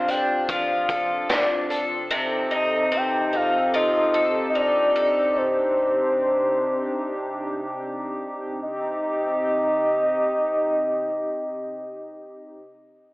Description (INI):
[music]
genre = dream pop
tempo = 74 BPM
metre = 4/4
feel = straight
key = C dorian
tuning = A4 = 440 Hz
[part]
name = soft octave-layered synth lead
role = melody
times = 0.0-12.6 s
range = C5 to G5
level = -22 LUFS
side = equal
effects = chorus, tremolo, tape echo
[part]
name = hollow soft pad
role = sustained chords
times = 0.0-12.6 s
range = C3 to A4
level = -29 LUFS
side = equal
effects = chorus
[part]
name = picked twelve-string acoustic guitar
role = arpeggios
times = 0.0-5.9 s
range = C3 to A4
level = -25 LUFS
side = left 1 dB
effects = wide subtle chorus, tape echo
[part]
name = raw garage drum kit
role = drums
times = 0.1-1.9 s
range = hi-hat, kick drum, snare drum, tambourine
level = -27 LUFS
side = equal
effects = none
[sound]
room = moderate plate reverb, RT60 2.5 s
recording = telephone sound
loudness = -20 LUFS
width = side -21 dB against mid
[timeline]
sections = 0.0-8.6 A section; 8.6-11.8 B section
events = none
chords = 0.0 Dm/C; 2.1 F7/C; 5.4 Cmadd9; 8.6 Cm